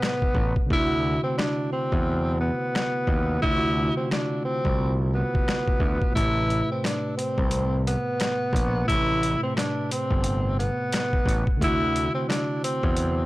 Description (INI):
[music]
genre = hip hop, boom-bap hip-hop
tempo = 88 BPM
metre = 4/4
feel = swing 59% on 16ths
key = A dorian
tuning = A4 = 440 Hz
[part]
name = breathy tenor saxophone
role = melody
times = 0.0-13.3 s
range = B3 to E4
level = -26 LUFS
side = equal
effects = high-pass filter, low-pass filter, tape echo
[part]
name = mellow tine electric piano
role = accompaniment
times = 0.0-13.3 s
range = A2 to B4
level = -30 LUFS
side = right 1 dB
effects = overdrive, cassette tape, high-pass filter, low-pass filter
[part]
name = boom bap sampler-style drum kit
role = drums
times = 0.0-13.2 s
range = hi-hat, kick drum, rim click, snare drum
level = -26 LUFS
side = equal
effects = none
[part]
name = overdriven picked electric bass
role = bass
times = 0.3-13.3 s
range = G1 to E2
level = -26 LUFS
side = equal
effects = transformer saturation
[sound]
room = little or no reverb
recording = blown-out, overdriven recording, overdrive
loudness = -22 LUFS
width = side -18 dB against mid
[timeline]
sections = 0.0-13.3 A section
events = break 0.0-6.2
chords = 0.0 Am9; 0.7 D9; 6.2 Am9; 11.6 D9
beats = 0.02 | 0.71 1.39 2.07 2.75 | 3.43 4.12 4.80 5.48 | 6.16 6.84 7.52 8.21 | 8.89 9.57 10.25 10.93 | 11.62 12.30 12.98